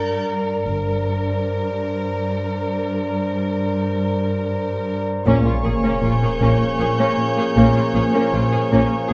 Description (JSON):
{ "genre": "cinematic", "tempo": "78 BPM", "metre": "3/4", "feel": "straight", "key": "Bb minor from 5.3 s", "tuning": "A4 = 435 Hz", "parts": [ { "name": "muted chamber violin section", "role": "melody", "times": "0.0-9.1 s", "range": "Bb4 to Db5", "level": "-30 LUFS", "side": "equal", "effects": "none" }, { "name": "glass harmonica", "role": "sustained chords", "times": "0.0-9.1 s", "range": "Bb4 to Bb5", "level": "-29 LUFS", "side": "equal", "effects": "none" }, { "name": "muted symphonic cello section", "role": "bass", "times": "0.0-8.8 s", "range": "G2 to Bb2", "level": "-27 LUFS", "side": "equal", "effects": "none" }, { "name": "muted chamber violin section", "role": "texture", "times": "0.0-0.2, 5.3-9.1 s", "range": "Db6 to Bb6", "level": "-36 LUFS", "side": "equal", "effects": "none" }, { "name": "muted chamber double bass section", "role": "bass", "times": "0.7-1.4, 5.3-9.1 s", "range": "G1 to Bb1", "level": "-28 LUFS", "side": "equal", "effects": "none" }, { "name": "muted chamber violin section", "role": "second line", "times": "5.3-9.1 s", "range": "Db4 to Ab4", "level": "-27 LUFS", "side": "equal", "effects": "none" }, { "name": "muted chamber viola section", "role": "accompaniment", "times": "5.3-9.1 s", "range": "Bb3", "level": "-26 LUFS", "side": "equal", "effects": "none" }, { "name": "clear trombone section", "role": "sustained chords", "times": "5.3-9.1 s", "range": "F3 to Bb3", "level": "-30 LUFS", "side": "equal", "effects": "none" }, { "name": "warm French horn section", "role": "sustained chords", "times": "5.3-9.1 s", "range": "Db4 to Ab4", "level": "-29 LUFS", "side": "equal", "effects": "none" }, { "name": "fat analog bass", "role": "riff", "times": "5.3-9.1 s", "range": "Bb2 to Bb3", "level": "-23 LUFS", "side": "equal", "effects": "none" }, { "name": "sub drop", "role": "sound effects", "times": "5.3-7.6 s", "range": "none", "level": "-30 LUFS", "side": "equal", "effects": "none" } ], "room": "wet recital hall reverb, RT60 1.3 s", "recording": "nothing above 7.9 kHz", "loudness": "-20 LUFS", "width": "mono", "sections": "0.0-5.3 A section; 5.3-9.1 B section", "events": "impact 5.3-7.6", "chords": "0.0 Gm; 0.6 Bbadd9/G; 5.3 Bbm7", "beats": "| 0.65 1.42 2.19 | 2.96 3.72 4.49 | 5.26 6.03 6.80 | 7.57 8.34 9.11" }